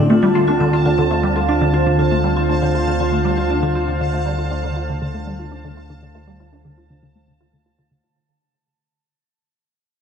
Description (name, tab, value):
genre	ambient, sequencer-driven space music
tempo	119 BPM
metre	4/4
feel	straight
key	D minor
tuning	A4 = 444 Hz
part	lush unison pad	sustained chords	0.0-8.0 s	D3 to G5	-21 LUFS	equal	chorus, phaser
part	vibraphone with hard mallets	arpeggios	0.0-4.0 s	C4 to F4	-21 LUFS	moving between left 2 dB and right 6 dB	auto-pan, tape echo
part	resonant blip pluck	riff	0.0-8.0 s	D3 to F4	-20 LUFS	equal	phaser, lush chorus, tape echo
part	warm sub bass	bass	0.0-8.0 s	D2	-25 LUFS	equal	none
part	bubbling stepped-filter texture	texture	0.2-8.1 s	A5	-28 LUFS	equal	chorus, built-in reverb
room	wet echo chamber reverb, RT60 2.4 s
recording	echo-heavy mix, nothing above 10.4 kHz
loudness	-15 LUFS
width	side -7 dB against mid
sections	0.0-8.0 A section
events	fade-out 0.0-8.0; filter sweep on synth arpeggio sound 0.0-8.0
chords	0.0 Dm7